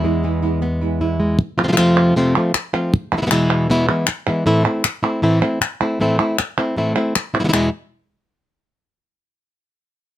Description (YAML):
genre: flamenco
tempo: 156 BPM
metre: 4/4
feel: straight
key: unclear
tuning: A4 = 437 Hz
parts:
  - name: flamenco guitar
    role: melody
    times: 0.0-7.7 s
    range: E2 to F4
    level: -16 LUFS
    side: equal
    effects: none
  - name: flamenco guitar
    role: stabs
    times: 0.0-1.4 s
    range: E3 to E4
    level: -24 LUFS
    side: right 7 dB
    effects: none
  - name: palmas hand claps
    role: percussion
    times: 1.6-7.6 s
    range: none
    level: -20 LUFS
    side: right 1 dB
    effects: none
room: little or no reverb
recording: close, detailed microphones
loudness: -16 LUFS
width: side -12 dB against mid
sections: 0.0-1.4 A section; 1.4-7.5 B section; 7.5-9.1 C section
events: none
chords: 0.0 E; 1.4 F; 2.9 E; 4.5 Am; 7.5 N.C.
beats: 0.24 0.62 1.01 | 1.39 1.77 2.16 2.54 | 2.93 3.31 3.69 4.08 | 4.46 4.84 5.23 5.61 | 6.00 6.38 6.76 7.15 | 7.53